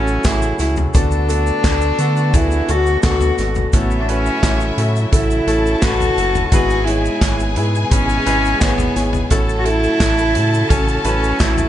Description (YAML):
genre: piano-driven pop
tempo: 86 BPM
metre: 4/4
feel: straight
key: A major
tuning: A4 = 439 Hz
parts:
  - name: warm cello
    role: melody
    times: 0.0-11.7 s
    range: B3 to F#4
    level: -19 LUFS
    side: equal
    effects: none
  - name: clear concert grand piano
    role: accompaniment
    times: 0.0-11.7 s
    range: G#2 to C#5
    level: -22 LUFS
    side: equal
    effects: none
  - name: warm studio string section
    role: sustained chords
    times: 0.0-11.7 s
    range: B2 to F#4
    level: -29 LUFS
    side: left 1 dB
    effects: none
  - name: round analog bass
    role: bass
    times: 0.0-11.7 s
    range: F#1 to D3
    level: -19 LUFS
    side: equal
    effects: none
  - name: tube shaker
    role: percussion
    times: 0.1-11.7 s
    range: none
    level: -36 LUFS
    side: left 8 dB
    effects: none
  - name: natural country drum kit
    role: drums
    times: 0.2-11.7 s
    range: handclaps, hi-hat, kick drum, snare drum, toms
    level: -18 LUFS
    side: equal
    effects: none
  - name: dark studio violin section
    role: second line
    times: 3.7-11.7 s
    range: E4 to A5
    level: -25 LUFS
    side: left 2 dB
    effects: ping-pong delay
room: light reverb, small room ambience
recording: nothing above 10.3 kHz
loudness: -14 LUFS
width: side -12 dB against mid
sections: 0.0-11.7 A section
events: none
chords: 0.0 A6; 0.9 D6; 3.7 A6; 6.5 E/G#; 9.3 A6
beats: 0.24 | 0.94 1.64 2.34 3.03 | 3.73 4.43 5.12 5.82 | 6.52 7.22 7.91 8.61 | 9.31 10.00 10.70 11.40